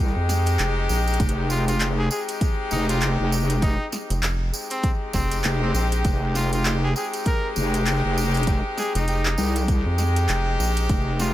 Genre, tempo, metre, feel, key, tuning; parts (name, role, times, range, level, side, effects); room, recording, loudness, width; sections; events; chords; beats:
glitch hop; 99 BPM; 4/4; swing 59% on 16ths; F minor; A4 = 440 Hz
bright horn section; stabs; 0.0-11.3 s; Ab3 to G4; -27 LUFS; left 2 dB; sidechain pumping, digital delay
wobble bass; bass; 0.0-11.3 s; F1 to C2; -23 LUFS; equal; chorus, overdrive
rubbery square bass; bass; 0.2-10.9 s; F1 to F2; -22 LUFS; equal
pop drum kit; drums; 0.3-11.3 s; handclaps, hi-hat, snare drum; -30 LUFS; equal; overdrive
tambourine; percussion; 0.3-11.3 s; -35 LUFS; right 3 dB
electronic kick drum; drums; 1.2-11.0 s; -23 LUFS; equal; overdrive
clear trumpet; melody; 1.5-11.3 s; C4 to Bb4; -31 LUFS; equal; digital delay
digital ambience; -20 LUFS; side -14 dB against mid
0.0-11.3 A section
0.0 Fm7
0.59 | 1.20 1.80 2.41 3.02 | 3.62 4.23 4.84 5.44 | 6.05 6.65 7.26 7.87 | 8.47 9.08 9.68 10.29 | 10.90